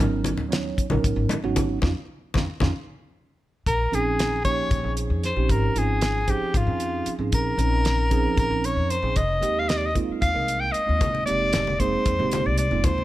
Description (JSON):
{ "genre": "electric jazz fusion", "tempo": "229 BPM (eighths)", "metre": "7/8", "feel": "straight", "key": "Bb dorian from 3.7 s", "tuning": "A4 = 439 Hz", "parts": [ { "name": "tine electric piano", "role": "accompaniment", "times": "0.0-13.0 s", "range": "F3 to Db5", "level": "-28 LUFS", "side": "right 5 dB", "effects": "phaser" }, { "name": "upright bass", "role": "bass", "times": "0.0-13.0 s", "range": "F1 to Bb2", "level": "-26 LUFS", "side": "left 1 dB", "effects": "none" }, { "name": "congas", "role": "percussion", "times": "0.2-2.7, 11.0-13.0 s", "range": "none", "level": "-29 LUFS", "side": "left 4 dB", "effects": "none" }, { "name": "damped 70s drum kit", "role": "drums", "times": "0.3-13.0 s", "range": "hi-hat, kick drum, snare drum", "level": "-26 LUFS", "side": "equal", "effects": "none" }, { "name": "breathy soprano saxophone", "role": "melody", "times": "3.7-13.0 s", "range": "F4 to G5", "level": "-25 LUFS", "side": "left 1 dB", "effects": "none" } ], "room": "light reverb", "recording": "none", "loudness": "-21 LUFS", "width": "side -15 dB against mid", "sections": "0.0-3.7 A section; 3.7-13.0 B section", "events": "band accent 1.8-3.7; drum fill 2.1-3.7", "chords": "0.0 Abm11; 1.8 Dbadd9/F; 3.7 Bbm11; 9.2 Fm11" }